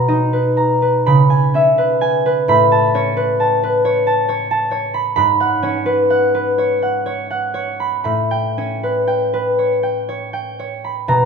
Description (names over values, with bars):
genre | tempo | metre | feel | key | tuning
classical, solo harp piece | 38-46 BPM (dotted quarters) | 6/8 | rubato | unclear | A4 = 440 Hz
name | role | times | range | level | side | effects
concert harp | solo | 0.0-11.3 s | G#2 to B5 | -14 LUFS | equal | none
room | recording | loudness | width
wet recital hall reverb, RT60 1.4 s | none | -14 LUFS | side -6 dB against mid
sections
0.0-11.3 A section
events
none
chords
0.0 Bmaj7; 1.1 C#m7; 2.5 Aadd9; 5.2 G#m7; 8.0 A9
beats
1.07 | 2.48 3.84 | 5.16 6.57 | 8.05 9.59 | 11.10